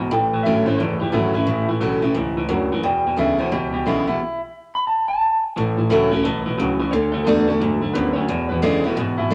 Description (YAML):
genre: rockabilly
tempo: 176 BPM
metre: 4/4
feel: swing 62% on 8ths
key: A major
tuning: A4 = 445 Hz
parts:
  - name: picked steel-string acoustic guitar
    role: accompaniment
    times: 0.0-9.3 s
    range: E2 to F#4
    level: -24 LUFS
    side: equal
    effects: none
  - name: electric guitar through a small old amp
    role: riff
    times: 0.0-9.3 s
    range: E2 to B3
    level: -25 LUFS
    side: equal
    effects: none
  - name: warm double bass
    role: bass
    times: 0.0-9.3 s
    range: F#1 to G#2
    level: -30 LUFS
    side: equal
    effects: none
  - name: electric guitar through a small old amp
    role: melody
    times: 0.1-9.3 s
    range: E4 to B5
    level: -26 LUFS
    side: equal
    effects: spring reverb
room: light reverb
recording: none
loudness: -20 LUFS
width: mono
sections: 0.0-5.6 A section; 5.6-9.3 B section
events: none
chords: 0.1 A; 2.8 E7; 4.2 N.C.; 5.6 A; 6.9 D; 8.3 E7